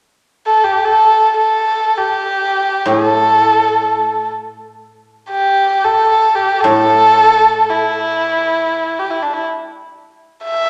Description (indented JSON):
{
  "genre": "chinese traditional, Chinese chamber ensemble",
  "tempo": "free time",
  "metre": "none",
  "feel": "none",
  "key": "unclear",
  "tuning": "A4 = 440 Hz",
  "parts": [
    { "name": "warm erhu", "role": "melody", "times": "0.5-10.7 s", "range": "D4 to E5", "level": "-14 LUFS", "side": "equal", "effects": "none" },
    { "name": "guzheng", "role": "accompaniment", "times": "2.9-9.2 s", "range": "A2", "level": "-21 LUFS", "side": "equal", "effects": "none" }
  ],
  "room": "wet recital hall reverb, RT60 1.7 s",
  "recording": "none",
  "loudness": "-14 LUFS",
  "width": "mono",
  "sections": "0.0-10.7 A section",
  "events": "none",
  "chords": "none"
}